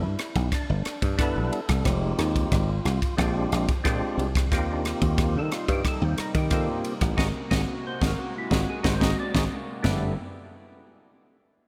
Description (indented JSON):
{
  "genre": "electric jazz fusion",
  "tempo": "90 BPM",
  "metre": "4/4",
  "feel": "straight",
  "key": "unclear",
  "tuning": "A4 = 439 Hz",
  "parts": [
    { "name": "percussive tonewheel organ", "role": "accompaniment", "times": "0.0-10.1 s", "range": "G3 to Eb5", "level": "-33 LUFS", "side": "equal", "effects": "slow rotary speaker, overdrive" },
    { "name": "dry thumbed slap bass", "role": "bass", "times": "0.0-10.2 s", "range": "F1 to Eb3", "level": "-28 LUFS", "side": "equal", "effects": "none" },
    { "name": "crisp fusion drum kit", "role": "drums", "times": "0.2-10.0 s", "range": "china cymbal, kick drum, ride cymbal, rim click, snare drum, toms", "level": "-30 LUFS", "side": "equal", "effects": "gated reverb" },
    { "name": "chorused pulse-width pad", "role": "sustained chords", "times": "4.5-10.2 s", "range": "C3 to Gb4", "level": "-37 LUFS", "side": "equal", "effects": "none" }
  ],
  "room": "light reverb, small room ambience",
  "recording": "bright 1980s-style digital production",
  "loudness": "-26 LUFS",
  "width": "mono",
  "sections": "0.0-9.8 A section; 9.8-11.7 B section",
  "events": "band accent 7.2-9.8; drum fill 8.5-9.8",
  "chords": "0.0 G6; 1.9 Fm9; 3.2 Bb13; 4.5 Eb6; 7.2 Ab9; 9.8 G6",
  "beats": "0.52 1.19 | 1.85 2.52 3.19 3.85 | 4.52 5.18 5.85 6.51 | 7.18 7.84 8.51 9.17 | 9.84"
}